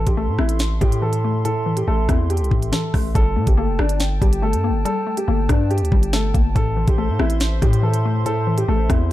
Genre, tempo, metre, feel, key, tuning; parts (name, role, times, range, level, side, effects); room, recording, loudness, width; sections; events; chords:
hip hop, drill; 141 BPM; 4/4; half-time; A4 = 440 Hz
dark concert grand piano; melody; 0.0-9.1 s; D4 to A4; -25 LUFS; right 2 dB; digital delay
hollow square pluck; accompaniment; 0.0-9.1 s; A2 to D4; -25 LUFS; left 6 dB; chorus
hollow soft pad; sustained chords; 0.0-9.1 s; A4 to C6; -33 LUFS; right 1 dB; chorus
distorted 808-style bass; bass; 0.0-9.1 s; F1 to Bb2; -20 LUFS; equal; distortion
drill drum kit; drums; 0.1-9.0 s; hi-hat, kick drum, rim click, snare drum; -20 LUFS; equal
little or no reverb; dark, warm production; -17 LUFS; side -14 dB against mid
0.0-3.2 A section; 3.2-9.1 B section
0.0 Am; 3.2 Gmadd9; 6.6 Am